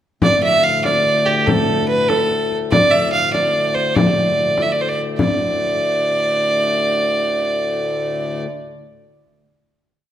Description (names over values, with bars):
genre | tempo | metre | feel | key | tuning
medieval dance | 97 BPM (dotted quarters) | 6/8 | straight | unclear | A4 = 439 Hz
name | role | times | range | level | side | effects
clear fiddle | melody | 0.2-8.4 s | G4 to F5 | -16 LUFS | right 2 dB | none
pedal harmonium | drone | 0.2-8.5 s | D2 to A2 | -24 LUFS | left 4 dB | none
frame drum | percussion | 0.2-5.4 s | none | -20 LUFS | left 3 dB | none
room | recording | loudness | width
wet recital hall reverb, RT60 1.4 s | none | -15 LUFS | side -10 dB against mid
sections
0.2-5.2 A section; 5.2-7.7 final chord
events
none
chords
none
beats
| 0.22 0.85 | 1.47 2.10 | 2.72 3.34 | 3.96 4.58 | 5.20 5.82 | 6.43 7.05